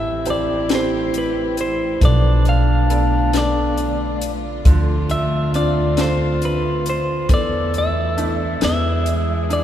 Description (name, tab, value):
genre	acoustic folk-pop ballad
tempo	45 BPM (dotted quarters)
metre	6/8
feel	straight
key	A minor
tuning	A4 = 440 Hz
part	clean electric guitar	melody	0.0-9.6 s	B4 to F5	-23 LUFS	left 1 dB	tremolo
part	warm clarinet	second line	0.0-9.6 s	D4 to A4	-25 LUFS	left 2 dB	none
part	bright upright piano	accompaniment	0.0-9.6 s	D3 to D5	-30 LUFS	right 2 dB	none
part	dark chamber string section	sustained chords	0.0-9.6 s	D3 to G4	-32 LUFS	left 2 dB	none
part	felt-muted upright piano	arpeggios	0.0-9.6 s	E3 to A4	-29 LUFS	right 2 dB	none
part	upright bass	bass	0.0-9.6 s	A1 to E2	-20 LUFS	equal	none
part	compact cocktail drum kit	drums	0.3-9.6 s	hi-hat, kick drum, snare drum	-21 LUFS	left 1 dB	none
room	wet cathedral reverb, RT60 5.3 s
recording	recorded in a church or concert hall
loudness	-16 LUFS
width	side -11 dB against mid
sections	0.0-9.6 A section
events	none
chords	0.0 Am7; 2.0 Bm7b5; 4.7 Dm7; 7.3 E7sus4; 8.6 E7